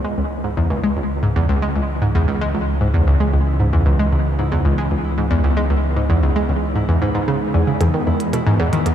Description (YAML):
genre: ambient, sequencer-driven space music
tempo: 114 BPM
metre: 4/4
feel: straight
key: unclear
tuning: A4 = 440 Hz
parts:
  - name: evolving wavetable pad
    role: sustained chords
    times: 0.5-8.9 s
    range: E3 to C#4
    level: -28 LUFS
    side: right 2 dB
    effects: chorus, built-in reverb
  - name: concert harp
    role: arpeggios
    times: 0.0-8.9 s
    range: E3 to B4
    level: -30 LUFS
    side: left 2 dB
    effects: auto-pan, analog delay
  - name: analog pluck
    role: riff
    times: 0.0-8.9 s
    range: C#2 to G#3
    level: -17 LUFS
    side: equal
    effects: chorus, analog delay
  - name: fat analog bass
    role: bass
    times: 0.0-8.9 s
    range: C#2 to E2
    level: -22 LUFS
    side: equal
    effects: none
  - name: electronic hi-hat and percussion blips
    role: percussion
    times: 7.8-8.9 s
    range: none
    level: -28 LUFS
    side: right 4 dB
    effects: overdrive, analog delay
room: light reverb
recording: dark, warm production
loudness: -16 LUFS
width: side -10 dB against mid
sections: 0.0-8.9 A section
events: fade-in on harp 0.0-8.9; fade-in on ambient pad 0.0-8.9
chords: 0.0 C#m; 7.8 E